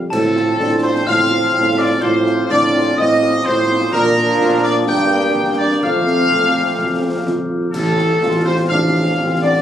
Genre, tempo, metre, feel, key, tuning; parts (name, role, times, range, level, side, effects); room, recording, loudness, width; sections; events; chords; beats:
military-style march for wind band; 126 BPM; 2/4; straight; A4 = 440 Hz
dark trombone section; sustained chords; 0.0-9.6 s; F3 to F4; -24 LUFS; right 1 dB
mellow tuba; bass; 0.0-9.6 s; A1 to Bb2; -19 LUFS; right 2 dB
warm trumpet section; melody; 0.1-9.6 s; A4 to G5; -19 LUFS; left 1 dB
glockenspiel with soft plastic mallets; second line; 0.1-7.5 s; A5 to G6; -24 LUFS; left 2 dB
mellow euphonium; second line; 0.1-9.6 s; A2 to F4; -24 LUFS; right 2 dB
mellow hollow large flute ensemble; second line; 0.1-9.6 s; A4 to G5; -23 LUFS; equal
clash cymbals, concert bass drum and concert snare drum; drums; 0.1-9.6 s; -26 LUFS; left 1 dB
mellow French horn section; accompaniment; 0.4-9.5 s; Bb3 to A4; -24 LUFS; left 3 dB
little or no reverb; recorded on a phone in the room, club reverb; -13 LUFS; side -10 dB against mid
0.1-7.7 A section; 7.7-9.6 A section
0.1 F/A; 2.0 F7/A; 3.9 Bb; 4.9 Gm; 5.8 F; 7.7 F/A
| 0.12 0.60 | 1.07 1.55 | 2.02 2.50 | 2.98 3.45 | 3.93 4.41 | 4.88 5.36 | 5.84 6.31 | 6.79 7.27 | 7.74 8.22 | 8.70 9.18